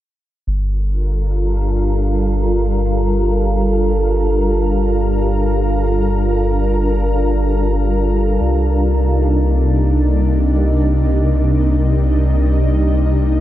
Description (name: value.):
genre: house.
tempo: free time.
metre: none.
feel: none.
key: unclear.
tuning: A4 = 440 Hz.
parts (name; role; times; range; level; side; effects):
shimmering ambient pad; sustained chords; 1.0-13.4 s; C3 to Bb4; -17 LUFS; equal; chorus, built-in reverb.
dark detuned saw bass; bass; 0.5-13.4 s; G1 to C2; -16 LUFS; equal; none.
room: light reverb.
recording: dense, heavily limited modern master.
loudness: -14 LUFS.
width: side -13 dB against mid.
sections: 0.5-13.4 A section.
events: filter sweep on ambient pad 0.5-13.4.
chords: 0.5 Gm7; 8.4 Cm7.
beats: free time.